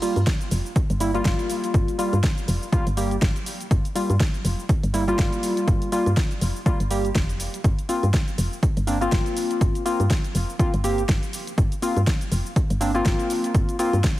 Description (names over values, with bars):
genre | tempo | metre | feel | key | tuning
deep house | 122 BPM | 4/4 | swing 57% on 16ths | G minor | A4 = 440 Hz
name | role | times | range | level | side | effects
warm analog keys | stabs | 0.0-14.0 s | G3 to G4 | -25 LUFS | left 1 dB | chorus, sidechain pumping, dub echo
deep house drum kit | drums | 0.0-14.2 s | hi-hat, shaker, snare drum | -30 LUFS | equal | overdrive, small room ambience
woody FM bass | bass | 0.2-14.0 s | F1 to G2 | -24 LUFS | equal | sidechain pumping
electronic kick drum | drums | 0.3-14.2 s | none | -22 LUFS | equal | overdrive, small room ambience
room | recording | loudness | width
light reverb | heavily compressed radio sound | -20 LUFS | side -16 dB against mid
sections
0.0-14.2 A section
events
none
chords
0.0 Gm7; 7.6 Bbsus2